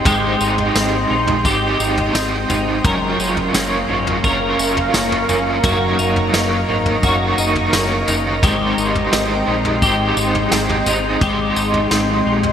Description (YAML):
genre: dream pop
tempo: 86 BPM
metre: 4/4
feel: straight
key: Ab major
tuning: A4 = 439 Hz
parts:
  - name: overdriven electric guitar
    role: accompaniment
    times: 0.0-12.5 s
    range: Gb3 to Db5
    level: -20 LUFS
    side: right 2 dB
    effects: tremolo, analog chorus, shimmer reverb
  - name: shimmering ambient pad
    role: sustained chords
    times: 0.0-12.5 s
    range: Ab3 to Db6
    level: -21 LUFS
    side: equal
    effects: chorus, built-in reverb, shimmer reverb
  - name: clean electric guitar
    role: arpeggios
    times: 0.0-12.5 s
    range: Gb2 to Bb4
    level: -20 LUFS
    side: left 2 dB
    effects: ensemble chorus, digital delay, shimmer reverb
  - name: fat analog bass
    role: bass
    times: 0.1-12.5 s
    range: Gb1 to Bb1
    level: -24 LUFS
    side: equal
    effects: none
  - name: vintage brush drum kit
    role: drums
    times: 0.1-12.5 s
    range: kick drum, snare drum, tambourine, toms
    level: -21 LUFS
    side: equal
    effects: gated reverb
  - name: glassy synth bell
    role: texture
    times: 9.1-11.1 s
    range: Eb5 to G5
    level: -30 LUFS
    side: equal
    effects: none
room: wet lush hall reverb, RT60 2.7 s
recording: bright 1980s-style digital production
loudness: -14 LUFS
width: side -8 dB against mid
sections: 0.0-12.5 A section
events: none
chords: 0.0 Abmaj7; 2.8 Gbmaj7; 5.6 Ebm7/Gb; 8.4 Abmaj7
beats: | 0.06 0.75 1.45 2.15 | 2.85 3.54 4.24 4.94 | 5.64 6.34 7.03 7.73 | 8.43 9.13 9.82 10.52 | 11.22 11.92